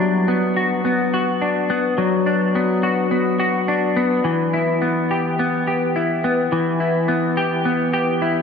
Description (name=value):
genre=dream pop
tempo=106 BPM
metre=4/4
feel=straight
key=unclear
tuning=A4 = 442 Hz
part: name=semi-hollow electric guitar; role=solo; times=0.0-8.4 s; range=E3 to G4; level=-17 LUFS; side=left 2 dB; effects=analog chorus, ping-pong delay
room=wet plate reverb, RT60 3.5 s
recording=dreamy mix soaked in reverb, nothing above 10.6 kHz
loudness=-17 LUFS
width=side -6 dB against mid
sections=0.0-8.4 A section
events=none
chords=0.0 Bm/F#; 4.3 Em